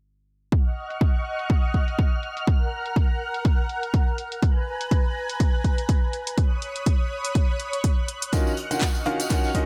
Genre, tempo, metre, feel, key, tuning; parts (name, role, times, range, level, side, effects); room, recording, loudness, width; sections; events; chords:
piano house; 123 BPM; 4/4; swing 56% on 16ths; Eb minor; A4 = 443 Hz
analog string pad; sustained chords; 0.5-9.7 s; Bb4 to Gb6; -33 LUFS; equal; ensemble chorus, sidechain pumping
electronic kick drum; drums; 0.5-9.7 s; -23 LUFS; equal; overdrive
house drum kit; drums; 0.5-9.7 s; handclaps, hi-hat; -35 LUFS; equal; overdrive, low-pass filter on hats, low-pass filter on snare, analog delay
clear grand piano; riff; 8.3-9.7 s; Eb3 to Gb5; -28 LUFS; equal; sidechain pumping, analog delay
swinging big-band drum kit; drums; 8.3-9.7 s; hi-hat, snare drum; -42 LUFS; equal
tambourine; percussion; 8.3-9.5 s; -38 LUFS; equal
light reverb, small room ambience; echo-heavy mix, faint mains hum; -24 LUFS; mono
0.5-9.7 A section
0.5 Ebm9; 2.5 Gbmaj7; 4.4 Abm9; 6.4 Db9sus4; 8.3 Ebm9